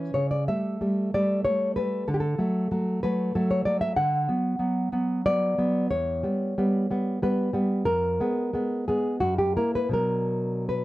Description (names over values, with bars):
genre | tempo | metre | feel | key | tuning
romantic piece for solo classical guitar | 78-98 BPM | 3/4 | rubato | D major, B minor from 4.0 s | A4 = 441 Hz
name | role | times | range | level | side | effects
nylon-string guitar | solo | 0.0-10.8 s | E2 to F#5 | -23 LUFS | equal | none
room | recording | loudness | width
light reverb | dark, warm production | -23 LUFS | side -17 dB against mid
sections
0.0-10.8 A section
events
none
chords
0.2 A7/C#; 2.1 D; 4.0 Bm/D; 5.9 C#m7b5/E; 7.8 Fdim; 9.2 F#7; 9.9 Bm